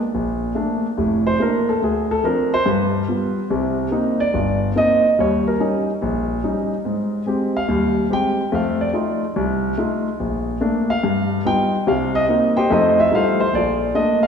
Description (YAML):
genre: solo jazz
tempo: 143 BPM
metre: 4/4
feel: swing 67% on 8ths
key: Bb major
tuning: A4 = 440 Hz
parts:
  - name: warm concert grand piano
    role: solo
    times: 0.1-14.3 s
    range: F1 to G5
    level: -17 LUFS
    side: equal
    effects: none
room: wet scoring stage reverb, RT60 2.0 s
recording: recorded in a church or concert hall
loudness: -17 LUFS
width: side -6 dB against mid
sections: 0.1-13.5 A section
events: grand piano solo 0.1-13.5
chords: 0.1 Bbmaj7; 1.8 Dm7b5; 2.7 G7; 3.5 Cm7; 5.2 Eb7; 6.9 Abmaj7; 8.5 F7; 10.2 Bbmaj7; 11.0 G7b13; 11.9 Cm7; 12.7 F9; 13.5 Bbmaj7